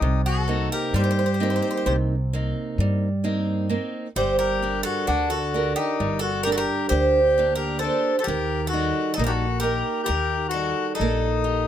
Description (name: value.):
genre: greek folk, Greek bouzouki band.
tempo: 132 BPM (eighths).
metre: 9/8.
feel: straight.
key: unclear.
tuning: A4 = 440 Hz.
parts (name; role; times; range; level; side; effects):
Greek bouzouki; melody; 0.0-11.7 s; F#4 to C5; -25 LUFS; right 2 dB; none.
accordion; second line; 0.0-11.7 s; D4 to A4; -27 LUFS; left 8 dB; none.
picked old ladder-braced acoustic guitar; accompaniment; 0.0-11.7 s; C3 to D5; -28 LUFS; right 3 dB; none.
upright bass; bass; 0.0-11.7 s; G1 to G2; -25 LUFS; equal; none.
room: little or no reverb.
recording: none.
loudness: -21 LUFS.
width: side -10 dB against mid.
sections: 0.0-11.7 A section.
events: speeding up 0.0-11.7.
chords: 0.0 Cm7; 4.2 Gm; 8.3 Eb.